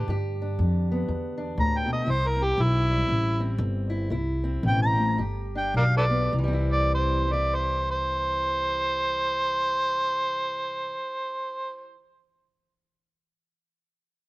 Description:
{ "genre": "acoustic country blues, solo or duo", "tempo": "101-120 BPM", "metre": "4/4", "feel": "swing 60% on 8ths", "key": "C major", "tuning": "A4 = 442 Hz", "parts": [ { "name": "overdriven harmonica", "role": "melody", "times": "0.0-11.9 s", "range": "E4 to Bb5", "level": "-25 LUFS", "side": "right 1 dB", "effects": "slapback echo" }, { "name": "fingerpicked steel-string acoustic guitar", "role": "accompaniment", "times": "0.0-11.9 s", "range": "G2 to E5", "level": "-32 LUFS", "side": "equal", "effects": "slapback echo" }, { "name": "upright bass", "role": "bass", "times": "0.0-10.9 s", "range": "G1 to G2", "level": "-26 LUFS", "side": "equal", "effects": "none" } ], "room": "little or no reverb", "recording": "recorded outdoors, with no room sound", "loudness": "-23 LUFS", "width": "side -19 dB against mid", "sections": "0.0-6.4 A section; 6.4-11.1 B section", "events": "slowing down 2.1-6.4", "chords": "0.0 G; 2.1 C; 5.2 G; 6.4 C", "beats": "| 0.09 0.58 1.08 1.58 | 2.08 2.59 3.09 3.60 | 4.13 4.66 5.21 5.77 | 6.35 6.94 7.54 8.13 | 8.72 9.32 9.91 10.50" }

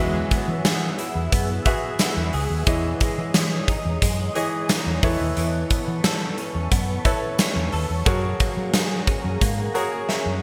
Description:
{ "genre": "1980s-style pop", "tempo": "89 BPM", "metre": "4/4", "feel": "straight", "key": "unclear", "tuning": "A4 = 439 Hz", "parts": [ { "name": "clear concert grand piano", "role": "accompaniment", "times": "0.0-10.4 s", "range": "E3 to A#5", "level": "-31 LUFS", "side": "equal", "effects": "none" }, { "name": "overdriven electric guitar", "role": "accompaniment", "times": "0.0-0.5 s", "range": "G#3", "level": "-36 LUFS", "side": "equal", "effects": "ensemble chorus" }, { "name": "glassy FM pad", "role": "sustained chords", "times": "0.1-10.4 s", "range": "G#4 to E6", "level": "-36 LUFS", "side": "equal", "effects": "ensemble chorus, built-in reverb" }, { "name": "direct-recorded clean electric guitar", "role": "riff", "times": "0.0-10.4 s", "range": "E3 to A4", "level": "-33 LUFS", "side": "equal", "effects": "ensemble chorus, delay" }, { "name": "fretless electric bass", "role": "bass", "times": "0.0-10.4 s", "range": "C#2 to F#3", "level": "-28 LUFS", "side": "equal", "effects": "none" }, { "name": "big rock drum kit", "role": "drums", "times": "0.3-10.2 s", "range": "hi-hat, kick drum, snare drum, tambourine", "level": "-25 LUFS", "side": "equal", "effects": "gated reverb" } ], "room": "moderate plate reverb, RT60 2.5 s", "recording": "bright 1980s-style digital production", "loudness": "-23 LUFS", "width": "mono", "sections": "0.0-10.4 A section", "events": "grand piano fill 9.4-10.4; drum fill 10.1-10.4", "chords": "0.0 Eadd9; 2.7 C#madd9/E; 5.0 Aadd9; 8.1 F#add9", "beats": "0.65 1.32 2.00 | 2.67 3.34 4.02 4.69 | 5.37 6.04 6.71 7.39 | 8.06 8.74 9.41 10.09" }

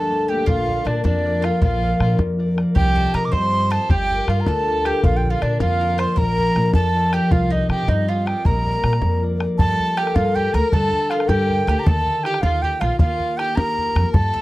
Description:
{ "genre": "celtic folk, Celtic jig", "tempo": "105 BPM (dotted quarters)", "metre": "6/8", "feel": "straight", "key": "Bb major, G minor from 9.6 s", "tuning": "A4 = 440 Hz", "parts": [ { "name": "bright baroque flute", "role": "melody", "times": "0.0-14.4 s", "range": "D5 to D6", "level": "-22 LUFS", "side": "right 2 dB", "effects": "none" }, { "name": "bowl-back mandolin", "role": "second line", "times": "0.0-14.4 s", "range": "D4 to C5", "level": "-32 LUFS", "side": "right 5 dB", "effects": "none" }, { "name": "warm fiddle", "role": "second line", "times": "0.0-14.4 s", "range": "D4 to C5", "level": "-29 LUFS", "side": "left 3 dB", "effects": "none" }, { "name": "concert harp", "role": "accompaniment", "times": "0.0-14.4 s", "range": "D2 to Eb5", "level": "-23 LUFS", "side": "left 2 dB", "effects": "none" }, { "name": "upright bass", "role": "bass", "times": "0.5-14.3 s", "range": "G1 to C3", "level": "-22 LUFS", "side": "equal", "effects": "none" }, { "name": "bodhran", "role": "percussion", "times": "0.5-14.4 s", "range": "none", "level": "-21 LUFS", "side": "equal", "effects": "none" } ], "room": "little or no reverb", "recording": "dry, close 1970s-style studio recording", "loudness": "-17 LUFS", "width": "side -18 dB against mid", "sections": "0.5-9.6 A section; 9.6-14.4 B section", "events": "none", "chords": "0.5 Bb; 2.8 Cm; 3.9 Gm7; 5.0 Bb; 7.3 Cm; 8.4 Bb; 9.6 Gmadd9; 11.9 Ebadd9", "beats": "| 0.47 1.04 | 1.61 2.18 | 2.75 3.32 | 3.89 4.46 | 5.03 5.60 | 6.17 6.74 | 7.31 7.88 | 8.45 9.02 | 9.59 10.16 | 10.73 11.29 | 11.87 12.43 | 13.00 13.57 | 14.14" }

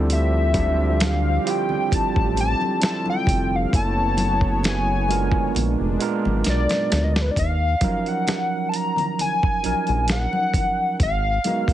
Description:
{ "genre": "R&B, neo-soul", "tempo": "66 BPM", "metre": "4/4", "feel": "swing 53% on 16ths", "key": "Eb minor from 7.4 s", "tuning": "A4 = 441 Hz", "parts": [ { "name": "overdriven tine electric piano", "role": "accompaniment", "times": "0.0-11.7 s", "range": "F3 to Bb4", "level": "-26 LUFS", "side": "moving between equal and right 10 dB", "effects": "auto-pan" }, { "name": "warm analog pad", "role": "sustained chords", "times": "0.0-7.3 s", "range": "Bb2 to Db5", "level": "-30 LUFS", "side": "left 1 dB", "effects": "chorus" }, { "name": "round analog bass", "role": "bass", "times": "0.0-11.4 s", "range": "F1 to Eb2", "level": "-22 LUFS", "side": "equal", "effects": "none" }, { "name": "hollow square lead", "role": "melody", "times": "0.1-11.7 s", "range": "Cb5 to Bb5", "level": "-24 LUFS", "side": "left 2 dB", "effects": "chorus, plate reverb" }, { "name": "dusty soul sampler-style drum kit", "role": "drums", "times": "0.1-11.7 s", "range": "finger snaps, hi-hat, kick drum, snare drum", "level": "-24 LUFS", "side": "equal", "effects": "none" }, { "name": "congas", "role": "percussion", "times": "0.5-11.7 s", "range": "none", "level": "-32 LUFS", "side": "left 3 dB", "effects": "none" } ], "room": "light reverb", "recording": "heavily compressed radio sound, nothing above 11.0 kHz", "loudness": "-19 LUFS", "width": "side -12 dB against mid", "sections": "0.0-7.4 A section; 7.4-11.7 B section", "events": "drum fill 6.5-7.4", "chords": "0.0 Dm11; 3.7 Gbm11; 5.5 Bb7b9; 7.4 Ebm9; 11.0 Abm9", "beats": "| 0.09 1.00 1.91 2.82 | 3.73 4.63 5.54 6.45 | 7.36 8.27 9.18 10.09 | 11.00" }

